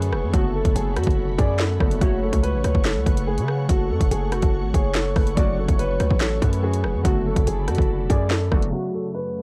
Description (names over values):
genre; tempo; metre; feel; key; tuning
hip hop, drill; 143 BPM; 4/4; half-time; F# minor; A4 = 440 Hz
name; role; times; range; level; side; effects
warm upright piano; melody; 0.0-9.4 s; F#4 to D5; -30 LUFS; equal; low-pass filter
warm velvety synth lead; second line; 0.0-8.3 s; A4 to D5; -34 LUFS; equal; chorus, digital delay
glassy digital keys; accompaniment; 0.0-9.4 s; C#3 to C#5; -33 LUFS; equal; chorus, low-pass filter
ethereal airy pad; sustained chords; 0.0-9.4 s; F#2 to C#6; -37 LUFS; equal; ensemble chorus, built-in reverb
distorted 808-style bass; bass; 0.0-8.7 s; E#1 to C#3; -26 LUFS; equal; distortion
drill drum kit; drums; 0.0-8.7 s; handclaps, hi-hat, kick drum, rim click, snare drum; -24 LUFS; equal; none
room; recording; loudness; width
little or no reverb; dark, warm production, low-pass filter; -21 LUFS; mono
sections
0.0-8.7 A section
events
none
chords
0.3 Bm7/F#; 2.0 F#m; 5.4 Dmaj7/F#; 7.0 Bm7/F#; 8.7 F#m